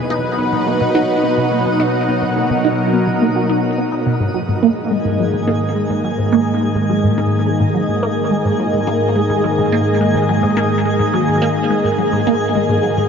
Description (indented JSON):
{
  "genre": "ambient",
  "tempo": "106 BPM",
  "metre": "4/4",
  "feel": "straight",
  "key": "G# minor",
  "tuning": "A4 = 438 Hz",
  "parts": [
    { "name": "lush unison pad", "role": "sustained chords", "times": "0.0-13.1 s", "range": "G#2 to F#5", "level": "-16 LUFS", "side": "equal", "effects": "chorus, phaser, shimmer reverb" },
    { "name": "resonant blip pluck", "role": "riff", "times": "0.0-13.0 s", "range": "G#2 to F#4", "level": "-19 LUFS", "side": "right 1 dB", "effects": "phaser, lush chorus, tape echo, shimmer reverb" },
    { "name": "twinkling granular texture", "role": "texture", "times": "0.0-13.1 s", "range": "D#4 to G#5", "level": "-25 LUFS", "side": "right 1 dB", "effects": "built-in reverb, shimmer reverb" }
  ],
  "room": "wet huge ambient reverb, RT60 8.2 s",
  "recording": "cassette tape",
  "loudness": "-14 LUFS",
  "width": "side -6 dB against mid",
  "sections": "0.0-13.1 A section",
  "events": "none",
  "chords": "0.0 B; 4.2 G#sus2"
}